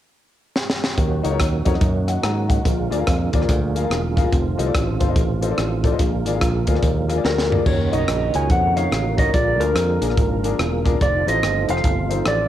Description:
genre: uptempo gospel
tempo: 144 BPM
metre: 4/4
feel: swing 64% on 8ths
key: Eb harmonic minor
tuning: A4 = 440 Hz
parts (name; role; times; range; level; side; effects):
- crisp fusion drum kit; drums; 0.6-12.4 s; crash cymbal, hi-hat, kick drum, rim click, snare drum, toms; -22 LUFS; equal; cassette tape
- warm upright piano; accompaniment; 1.0-12.2 s; Bb2 to Bb5; -26 LUFS; left 9 dB; none
- tonewheel organ; sustained chords; 1.0-12.5 s; Db3 to Gb4; -27 LUFS; right 8 dB; chorus vibrato, stopped rotary speaker
- fingered electric bass; bass; 1.0-12.5 s; Fb1 to Ab2; -22 LUFS; equal; none
- electric slide guitar; melody; 7.3-12.5 s; Bb4 to Ab5; -22 LUFS; equal; none
- warm French horn section; sustained chords; 7.7-12.5 s; Db4 to C5; -31 LUFS; equal; none
room: light reverb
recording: home recording on cassette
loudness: -17 LUFS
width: side -12 dB against mid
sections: 1.0-7.7 A section; 7.7-12.5 B section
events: drum fill 0.6-1.0, 7.2-7.7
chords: 0.0 N.C.; 1.0 Ebm7; 2.6 Bb7; 4.3 F7; 6.0 Bb7; 7.7 Ebm7; 9.3 Bb7; 11.0 F7

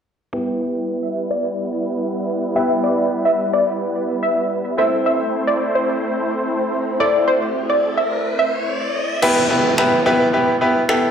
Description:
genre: dance-pop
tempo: 108 BPM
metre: 4/4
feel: straight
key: E minor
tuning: A4 = 440 Hz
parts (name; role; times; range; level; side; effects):
- wide unison pluck; melody; 0.3-8.8 s; C5 to G5; -20 LUFS; equal; analog chorus, low-pass filter, slapback echo, tape echo
- bright grand piano; accompaniment; 0.3-11.1 s; B3 to D5; -20 LUFS; equal; low-pass filter, slapback echo
- filtered supersaw swell; sustained chords; 0.3-9.2 s; G3 to C5; -22 LUFS; right 1 dB; low-pass filter
- riser and downlifter; sound effects; 6.5-11.1 s; none; -25 LUFS; equal; slapback echo
- pop drum kit; drums; 9.2-11.0 s; crash cymbal, finger snaps; -23 LUFS; left 2 dB; none
room: moderate club reverb, RT60 0.8 s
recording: live gig heard through the venue's PA, recital hall reverb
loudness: -16 LUFS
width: side -7 dB against mid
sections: 0.3-9.2 A section; 9.2-11.1 B section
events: filter sweep 0.3-9.2; riser 6.5-9.2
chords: 0.3 Em; 4.8 Am; 9.2 Em

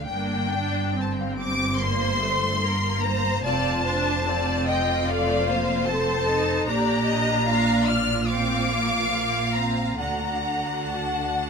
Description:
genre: classical, slow romantic movement for string orchestra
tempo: 73 BPM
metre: 4/4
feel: uneven beats, rubato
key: G minor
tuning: A4 = 438 Hz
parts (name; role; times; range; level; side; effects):
- warm symphonic violin section; melody; 0.0-11.5 s; F5 to F6; -26 LUFS; left 3 dB; none
- clear symphonic viola section; accompaniment; 0.0-11.5 s; A3 to A4; -28 LUFS; equal; none
- rich symphonic cello section; bass; 0.1-11.5 s; F2 to D3; -29 LUFS; right 2 dB; none
- warm symphonic double bass section; bass; 0.1-11.5 s; F1 to D2; -30 LUFS; right 2 dB; none
- warm symphonic violin section; second line; 1.8-11.5 s; Bb4 to F#5; -27 LUFS; left 1 dB; none
room: moderate large studio reverb, RT60 1.4 s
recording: minimal, uncompressed stereo recording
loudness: -21 LUFS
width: side -5 dB against mid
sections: 0.1-11.5 A section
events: none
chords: 0.1 Gm; 3.5 F; 6.7 Bb; 10.0 D

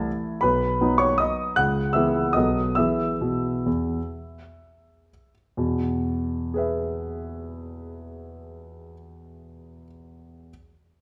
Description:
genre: classical, piano waltz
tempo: 118-168 BPM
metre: 3/4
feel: rubato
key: E major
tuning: A4 = 441 Hz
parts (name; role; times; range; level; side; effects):
- clear concert grand piano; solo; 0.0-10.5 s; B1 to F#6; -25 LUFS; equal; none
room: moderate recital hall reverb, RT60 1.5 s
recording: none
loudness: -24 LUFS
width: mono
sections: 0.0-5.6 A section; 5.6-8.4 B section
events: slowing down 2.1-5.6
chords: 0.4 B; 1.6 C#m7; 2.3 B7; 2.8 E

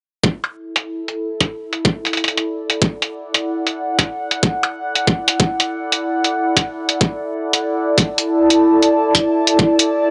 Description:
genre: glitch hop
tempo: 93 BPM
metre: 4/4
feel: swing 63% on 16ths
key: unclear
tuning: A4 = 439 Hz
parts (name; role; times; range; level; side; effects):
- electronic kick drum; drums; 0.2-9.8 s; none; -18 LUFS; equal; high-pass filter on kick, high-pass filter on room
- warbly tape-like pad; texture; 0.6-10.1 s; E4 to A5; -20 LUFS; equal; chorus, built-in reverb, phaser, sidechain pumping
- electronic hi-hat; drums; 0.4-9.9 s; none; -18 LUFS; equal; low-pass filter on hats, low-pass filter on room
room: moderate plate reverb, RT60 1.6 s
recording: nothing above 10.8 kHz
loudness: -18 LUFS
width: mono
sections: 0.2-10.1 A section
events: fade-in on ambient pad 0.2-10.1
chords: 0.2 E7sus2

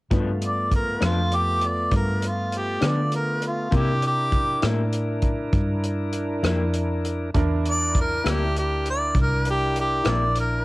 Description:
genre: slow blues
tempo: 66 BPM (dotted quarters)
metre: 12/8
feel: straight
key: unclear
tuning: A4 = 440 Hz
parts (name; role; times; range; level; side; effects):
- electric guitar through a small old amp; accompaniment; 0.1-10.2 s; G2 to E4; -28 LUFS; left 5 dB; harmonic tremolo, cassette tape
- bright tonewheel organ; sustained chords; 0.1-10.6 s; A3 to Bb4; -30 LUFS; equal; overdrive, slow rotary speaker, cassette tape
- vintage muted fingered electric bass; bass; 0.1-10.6 s; Bb1 to D3; -25 LUFS; equal; transformer saturation
- warm soul drum kit; drums; 0.1-10.5 s; hi-hat, kick drum, rim click; -25 LUFS; equal; cassette tape
- warm harmonica; melody; 0.5-10.6 s; F4 to D5; -24 LUFS; equal; none
- bright concert grand piano; accompaniment; 7.3-10.6 s; D4 to Bb4; -33 LUFS; right 5 dB; cassette tape
room: studio reverb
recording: home recording on cassette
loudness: -20 LUFS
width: side -20 dB against mid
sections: 0.1-10.6 A section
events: none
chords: 0.1 G7; 3.7 C7

